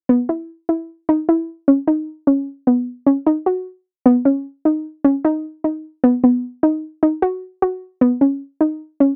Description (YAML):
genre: progressive instrumental, progressive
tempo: 152 BPM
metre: 5/4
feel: straight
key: unclear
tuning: A4 = 440 Hz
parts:
  - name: soft round pluck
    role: solo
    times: 0.1-9.1 s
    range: B3 to F#4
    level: -17 LUFS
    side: equal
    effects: chorus
room: moderate booth ambience, RT60 0.2 s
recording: dry, close 1970s-style studio recording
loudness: -19 LUFS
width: mono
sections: 0.0-4.1 A section; 4.1-9.2 B section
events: none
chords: none